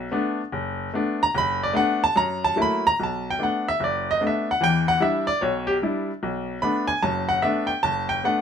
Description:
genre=solo jazz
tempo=149 BPM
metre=4/4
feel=swing 65% on 8ths, rubato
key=B minor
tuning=A4 = 440 Hz
part: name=bright upright piano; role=solo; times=0.0-8.4 s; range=F#1 to B5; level=-21 LUFS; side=equal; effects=none
room=light reverb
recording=none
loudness=-21 LUFS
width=side -7 dB against mid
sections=0.0-3.0 A section; 3.0-8.4 A section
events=upright piano solo 0.0-8.4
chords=0.0 Bm7; 2.2 F#7#9; 3.0 Bm7; 4.6 Em7; 6.2 Bm7

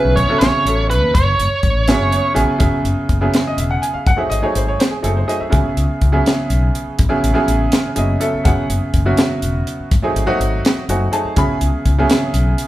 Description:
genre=electric jazz fusion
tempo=82 BPM (dotted quarters)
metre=6/8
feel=straight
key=F# dorian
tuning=A4 = 441 Hz
part: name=biting lead guitar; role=melody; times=0.0-2.3 s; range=B4 to C#5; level=-17 LUFS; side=right 2 dB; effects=overdrive
part: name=bright baby grand piano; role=accompaniment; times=0.0-12.7 s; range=C#3 to B5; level=-18 LUFS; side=right 1 dB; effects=none
part: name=mellow fretless electric bass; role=bass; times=0.0-12.5 s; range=E1 to D#2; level=-19 LUFS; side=equal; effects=none
part: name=tight funk drum kit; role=drums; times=0.2-12.7 s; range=hi-hat, kick drum, snare drum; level=-18 LUFS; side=equal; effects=none
room=moderate large studio reverb, RT60 1.1 s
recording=band playing live in one room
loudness=-14 LUFS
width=side -15 dB against mid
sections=0.0-2.6 A section; 2.6-12.7 B section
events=grand piano fill 1.9-2.6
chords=0.0 B9sus4; 1.1 F#m9; 2.6 F#9sus4; 4.1 G#7b9; 5.5 C#m7; 7.0 A69; 8.4 F#9sus4; 9.9 G#7b9; 11.4 C#m7

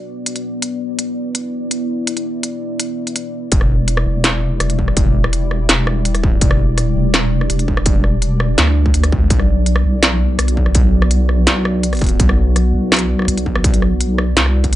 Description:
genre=half-time drum and bass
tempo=166 BPM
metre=4/4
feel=half-time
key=E minor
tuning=A4 = 440 Hz
part: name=deep dark ambient pad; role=sustained chords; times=0.0-14.8 s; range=G3 to D5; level=-23 LUFS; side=equal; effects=chorus, built-in reverb, sidechain pumping
part: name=industrial drum kit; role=drums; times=0.3-14.8 s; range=hi-hat, rim click, snare drum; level=-17 LUFS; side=equal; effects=small room reverb
part: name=deep soft wobble bass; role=bass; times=3.5-14.8 s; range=E1 to D2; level=-15 LUFS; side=equal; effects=chorus
part: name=electronic kick drum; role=drums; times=3.5-14.7 s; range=none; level=-15 LUFS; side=equal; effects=distortion, small room reverb
room=little or no reverb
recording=dry, gritty hardware recording, nothing above 10.7 kHz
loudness=-13 LUFS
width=side -14 dB against mid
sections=0.0-3.5 A section; 3.5-14.8 B section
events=drop 3.5-14.8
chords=0.0 Bm; 3.5 Em7; 9.3 Bm

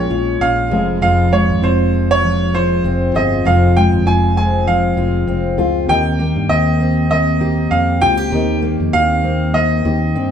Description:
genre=acoustic pop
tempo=99 BPM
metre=4/4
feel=swing 55% on 16ths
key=F minor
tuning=A4 = 443 Hz
part: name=bright upright piano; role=melody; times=0.0-10.3 s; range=C5 to Ab5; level=-18 LUFS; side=right 2 dB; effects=none
part: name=felt-muted upright piano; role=accompaniment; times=0.0-10.3 s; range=Ab3 to G5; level=-27 LUFS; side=left 3 dB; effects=none
part: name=fingerpicked steel-string acoustic guitar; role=accompaniment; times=0.0-10.3 s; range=F2 to G4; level=-18 LUFS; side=left 2 dB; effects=none
part: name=fingerpicked plugged-in steel-string acoustic guitar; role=arpeggios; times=0.0-10.3 s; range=Eb3 to G4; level=-23 LUFS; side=right 1 dB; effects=none
part: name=fingered electric bass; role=bass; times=0.0-10.3 s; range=F1 to G2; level=-19 LUFS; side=equal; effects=none
room=wet large studio reverb, RT60 1.0 s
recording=band playing live in one room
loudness=-13 LUFS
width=side -8 dB against mid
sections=0.0-10.3 A section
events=none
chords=0.0 Bbm7; 0.7 Fm; 5.9 Cm7

